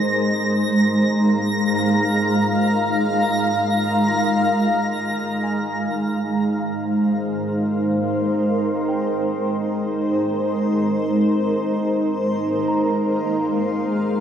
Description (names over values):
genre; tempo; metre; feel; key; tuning
ambient; free time; none; none; Ab major; A4 = 440 Hz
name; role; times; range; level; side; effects
granular cloud pad; sustained chords; 0.0-14.2 s; Ab3 to Bb5; -18 LUFS; equal; built-in reverb
twinkling granular texture; texture; 0.0-5.1 s; Bb6; -27 LUFS; right 1 dB; built-in reverb
muted felt-like synth keys; arpeggios; 5.4-14.2 s; G5 to Bb5; -35 LUFS; equal; none
room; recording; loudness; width
wet lush hall reverb, RT60 2.9 s; none; -18 LUFS; side -8 dB against mid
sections
0.0-5.1 A section; 5.1-14.2 B section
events
filter sweep on ambient pad 0.0-5.1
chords
0.0 Eb5/Ab; 5.1 Abmaj7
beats
free time